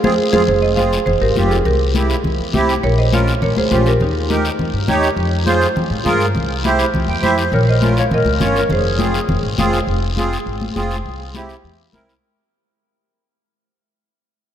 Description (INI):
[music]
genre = latin, cumbia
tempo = 204 BPM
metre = 4/4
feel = straight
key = F minor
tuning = A4 = 440 Hz
[part]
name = buzzing marimba with hard mallets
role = melody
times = 0.0-4.9, 7.5-9.6 s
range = Eb4 to F5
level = -20 LUFS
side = right 2 dB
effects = none
[part]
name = accordion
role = accompaniment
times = 0.0-12.1 s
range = C4 to G5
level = -19 LUFS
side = right 2 dB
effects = light tremolo tuning
[part]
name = upright bass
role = bass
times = 0.0-12.2 s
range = F1 to Ab2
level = -19 LUFS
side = equal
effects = none
[part]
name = congas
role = percussion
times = 0.0-12.1 s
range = none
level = -22 LUFS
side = left 2 dB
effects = none
[part]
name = guiro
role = percussion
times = 0.0-12.2 s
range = none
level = -29 LUFS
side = left 6 dB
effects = none
[part]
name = breathy clarinet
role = second line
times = 7.5-9.6 s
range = Ab4 to Db5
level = -25 LUFS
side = left 2 dB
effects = none
[sound]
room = wet cathedral reverb, RT60 5.8 s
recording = in a vast, echoing space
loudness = -14 LUFS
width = side -10 dB against mid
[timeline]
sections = 0.5-9.9 A section; 9.9-12.2 B section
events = band accent 0.0-0.5; accordion fill 6.9-7.5; fade-out 9.9-12.2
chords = 0.5 Fm; 1.7 C7; 2.8 Bbm; 4.0 Eb; 5.2 Fm; 6.4 C; 7.5 Bbm; 8.7 Fm; 11.1 C7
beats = 0.19 | 0.48 0.78 1.07 1.36 | 1.66 1.95 2.24 2.54 | 2.83 3.12 3.42 3.71 | 4.00 4.30 4.59 4.88 | 5.18 5.47 5.76 6.06 | 6.35 6.64 6.94 7.23 | 7.53 7.82 8.11 8.41 | 8.70 8.99 9.29 9.58 | 9.88 10.17 10.46 10.76 | 11.05 11.35 11.64 11.94